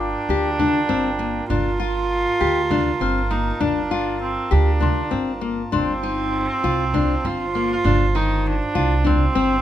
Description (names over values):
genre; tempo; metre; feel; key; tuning
contemporary instrumental, chamber music in an uneven meter; 199 BPM (eighths); 7/8; straight; G minor; A4 = 443 Hz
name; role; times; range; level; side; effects
warm viola; second line; 0.0-9.6 s; C4 to F4; -23 LUFS; right 3 dB; none
pedal harmonium; sustained chords; 0.0-9.6 s; F4 to A5; -31 LUFS; right 2 dB; none
nylon-string guitar; arpeggios; 0.0-9.6 s; Eb3 to G4; -24 LUFS; left 6 dB; none
upright bass; bass; 0.0-9.6 s; G1 to D2; -23 LUFS; right 2 dB; none
large celesta; texture; 0.0-7.2 s; C6 to F6; -32 LUFS; left 8 dB; none
frame drum; percussion; 0.3-9.5 s; none; -28 LUFS; right 2 dB; none
room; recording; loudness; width
light reverb; close, detailed microphones; -18 LUFS; side -12 dB against mid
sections
0.0-9.6 A section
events
none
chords
0.0 Gm7; 5.7 F/G